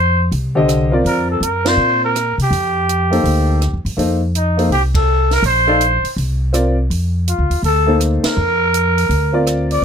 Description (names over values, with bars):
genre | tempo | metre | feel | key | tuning
modal jazz | 164 BPM | 4/4 | swing 65% on 8ths | unclear | A4 = 440 Hz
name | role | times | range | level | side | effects
growling trumpet | melody | 0.0-9.8 s | Eb4 to D5 | -16 LUFS | equal | none
upright bass | bass | 0.0-9.8 s | Bb1 to C3 | -17 LUFS | equal | none
compact cocktail drum kit | drums | 0.3-9.8 s | hi-hat, kick drum, ride cymbal, rim click, snare drum | -25 LUFS | right 3 dB | none
warm baby grand piano | accompaniment | 0.6-9.8 s | D3 to F5 | -17 LUFS | left 1 dB | none
room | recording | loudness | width
little or no reverb | close, detailed microphones | -13 LUFS | side -7 dB against mid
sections
0.0-9.8 A section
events
band accent 1.6, 4.9, 8.2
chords
0.0 F7sus4; 1.1 Bb/F; 4.0 F7sus4; 6.9 Bb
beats
0.32 0.68 | 1.05 1.42 1.78 2.15 | 2.52 2.88 3.25 3.61 | 3.98 4.34 4.71 5.08 | 5.44 5.81 6.17 6.54 | 6.91 7.27 7.64 8.00 | 8.37 8.73 9.10 9.46 | 9.83